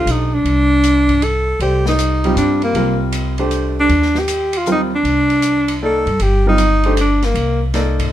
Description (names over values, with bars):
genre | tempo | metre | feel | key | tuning
modal jazz | 156 BPM | 3/4 | swing 66% on 8ths | C dorian | A4 = 437 Hz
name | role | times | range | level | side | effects
breathy alto saxophone | melody | 0.0-7.6 s | Bb3 to A4 | -15 LUFS | equal | none
clear baby grand piano | accompaniment | 0.0-8.1 s | G3 to D5 | -20 LUFS | right 1 dB | none
upright bass | bass | 0.0-8.1 s | G1 to G2 | -18 LUFS | equal | none
open jazz drum kit | drums | 0.1-8.1 s | hi-hat, kick drum, ride cymbal, snare drum | -26 LUFS | left 1 dB | none
room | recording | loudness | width
light reverb | minimal, uncompressed stereo recording | -13 LUFS | side -12 dB against mid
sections
0.0-8.1 A section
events
none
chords
0.0 Cm9